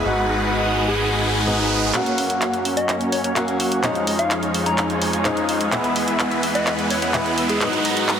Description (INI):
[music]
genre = EDM, festival progressive house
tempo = 127 BPM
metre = 4/4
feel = straight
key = F# major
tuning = A4 = 440 Hz
[part]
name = soft struck synth lead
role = melody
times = 0.0-7.7 s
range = G#4 to A#5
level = -28 LUFS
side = left 2 dB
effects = chorus, dub echo
[part]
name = fingerpicked swing-style acoustic guitar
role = accompaniment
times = 0.0-8.2 s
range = G#2 to F#4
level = -24 LUFS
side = left 2 dB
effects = dub echo
[part]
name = bright symphonic string section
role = sustained chords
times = 0.0-8.2 s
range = E2 to D#6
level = -28 LUFS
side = right 1 dB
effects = low-pass filter
[part]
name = big supersaw lead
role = riff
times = 0.0-8.2 s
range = G#3 to A#5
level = -23 LUFS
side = right 1 dB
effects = low-pass filter, dub echo
[part]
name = fat analog bass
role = bass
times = 0.0-1.9 s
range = G#1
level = -26 LUFS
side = equal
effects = none
[part]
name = riser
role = sound effects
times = 0.0-8.2 s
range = none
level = -27 LUFS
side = right 1 dB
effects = none
[part]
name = big-room dance drum kit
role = drums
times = 1.9-8.2 s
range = handclaps, hi-hat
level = -24 LUFS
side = equal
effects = soft clipping on snare
[sound]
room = moderate lush hall reverb, RT60 1.8 s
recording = dense, heavily limited modern master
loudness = -18 LUFS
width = side -8 dB against mid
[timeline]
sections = 0.0-1.9 A section; 1.9-8.2 B section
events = riser 0.0-1.9, 1.9-8.2; build-up 1.9-8.2; drum fill 1.9-8.2; filter sweep on supersaw synth 1.9-8.2; filter sweep on string section 1.9-8.2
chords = 0.1 G#m7; 1.9 F#; 3.8 C#add9/E#; 5.7 E; 7.6 G#m7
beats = | 0.05 0.53 1.00 1.47 | 1.94 2.42 2.89 3.36 | 3.83 4.31 4.78 5.25 | 5.72 6.20 6.67 7.14 | 7.61 8.09